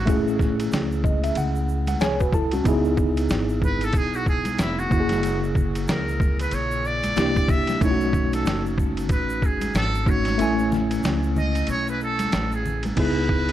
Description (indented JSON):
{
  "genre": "hip hop, jazz-hop",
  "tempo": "93 BPM",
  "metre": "4/4",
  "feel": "swing 59% on 16ths",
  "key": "unclear",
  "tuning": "A4 = 441 Hz",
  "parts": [
    { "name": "trumpet with metal mute", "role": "melody", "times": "0.0-13.5 s", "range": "E4 to E5", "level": "-28 LUFS", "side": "right 1 dB", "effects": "tape echo" },
    { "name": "tine electric piano", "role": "accompaniment", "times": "0.0-13.5 s", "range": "C#3 to A5", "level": "-24 LUFS", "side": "equal", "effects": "fast stereo tremolo" },
    { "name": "upright bass", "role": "bass", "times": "0.0-13.5 s", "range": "E#1 to C#2", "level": "-27 LUFS", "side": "equal", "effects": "none" },
    { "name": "trip hop sampler-style drum kit", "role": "drums", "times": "0.1-13.5 s", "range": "crash cymbal, hi-hat, kick drum, ride cymbal, snare drum", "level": "-25 LUFS", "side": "equal", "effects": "none" },
    { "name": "tube shaker and congas", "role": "percussion", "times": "0.1-13.0 s", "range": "none", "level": "-34 LUFS", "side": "right 1 dB", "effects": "none" }
  ],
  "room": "little or no reverb",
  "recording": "dry, gritty hardware recording, transformer saturation",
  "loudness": "-20 LUFS",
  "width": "side -12 dB against mid",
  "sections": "0.0-13.0 A section",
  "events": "muted trumpet solo 0.0-13.0; tine electric piano fill 0.7-2.7; kick muted 10.4-13.0",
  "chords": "0.1 Amaj13; 2.7 C#m9; 4.9 F#7; 7.2 C9; 7.8 B9; 10.4 Amaj9; 13.0 C#m9"
}